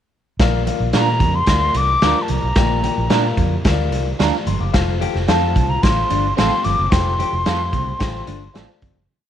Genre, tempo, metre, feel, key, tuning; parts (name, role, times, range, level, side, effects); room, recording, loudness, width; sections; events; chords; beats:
uptempo 1960s-style soul; 110 BPM; 4/4; straight; Bb major; A4 = 440 Hz
dark upright piano; accompaniment; 0.4-9.0 s; Bb2 to D6; -26 LUFS; left 13 dB
vintage muted fingered electric bass; bass; 0.4-9.1 s; F1 to Bb2; -21 LUFS; right 1 dB; transformer saturation
raw garage drum kit; drums; 0.4-8.9 s; hi-hat, kick drum, snare drum; -20 LUFS; equal
congas; percussion; 0.4-9.1 s; -30 LUFS; right 12 dB
electric guitar through a small old amp; stabs; 0.9-8.7 s; C4 to Bb4; -24 LUFS; right 15 dB
hollow concert flute; melody; 1.0-8.5 s; A5 to D6; -20 LUFS; left 1 dB
electric guitar through a small old amp; riff; 5.0-9.0 s; C4 to G4; -27 LUFS; left 14 dB; wide subtle chorus
light reverb, small room ambience; 1960s-style stereo with parts hard left and right; -15 LUFS; side -10 dB against mid
0.4-9.1 verse
fade-out 6.9-9.1
0.4 Bb; 4.7 F
| 0.39 0.93 1.48 2.02 | 2.56 3.11 3.65 4.20 | 4.74 5.29 5.83 6.37 | 6.92 7.46 8.00 8.54